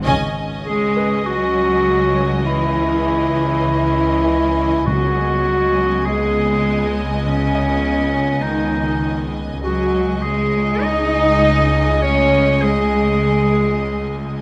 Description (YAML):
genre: cinematic, suspense film score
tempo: 100 BPM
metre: 4/4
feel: straight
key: C# minor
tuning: A4 = 440 Hz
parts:
  - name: rich studio violin section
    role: second line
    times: 0.0-14.4 s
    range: D#5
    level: -33 LUFS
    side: equal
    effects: none
  - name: rich studio viola section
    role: accompaniment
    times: 0.0-14.4 s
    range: G#3 to C#4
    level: -32 LUFS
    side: equal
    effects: none
  - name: warm studio double bass section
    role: bass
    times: 0.0-14.4 s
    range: C#2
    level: -27 LUFS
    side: equal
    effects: none
  - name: bowed-like drone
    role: drone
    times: 0.0-14.4 s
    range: C#2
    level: -26 LUFS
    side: equal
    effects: built-in reverb
  - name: bright grand piano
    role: texture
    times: 0.0-14.4 s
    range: B4 to D#5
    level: -36 LUFS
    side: equal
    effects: none
  - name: rich studio violin section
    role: melody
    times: 0.1-14.4 s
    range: G#5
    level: -33 LUFS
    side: equal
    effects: none
  - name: rich studio violin section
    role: texture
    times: 0.1-14.1 s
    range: G#5 to A#6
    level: -38 LUFS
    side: equal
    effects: none
  - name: bright clarinet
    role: second line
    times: 0.6-14.4 s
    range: C#4 to D#5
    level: -24 LUFS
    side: equal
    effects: none
  - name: warm French horn section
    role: sustained chords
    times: 0.7-14.4 s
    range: C#4 to D#5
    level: -24 LUFS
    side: equal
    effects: none
  - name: clear studio cello section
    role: bass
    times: 0.7-14.4 s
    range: C#3 to D#4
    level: -25 LUFS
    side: equal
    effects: none
  - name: timpani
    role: percussion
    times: 4.9-5.7 s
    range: C#3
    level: -27 LUFS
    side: equal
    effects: none
room: moderate recital hall reverb, RT60 1.3 s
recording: none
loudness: -18 LUFS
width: mono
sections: 0.0-14.4 A section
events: band accent 0.0-0.7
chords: 0.0 C#madd9; 4.9 G#m/C#; 9.6 C#sus2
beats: | 0.04 0.65 1.26 1.86 | 2.46 3.07 3.67 4.26 | 4.86 5.45 6.05 6.64 | 7.24 7.83 8.42 9.02 | 9.61 10.21 10.83 11.43 | 12.03 12.63 13.23 13.83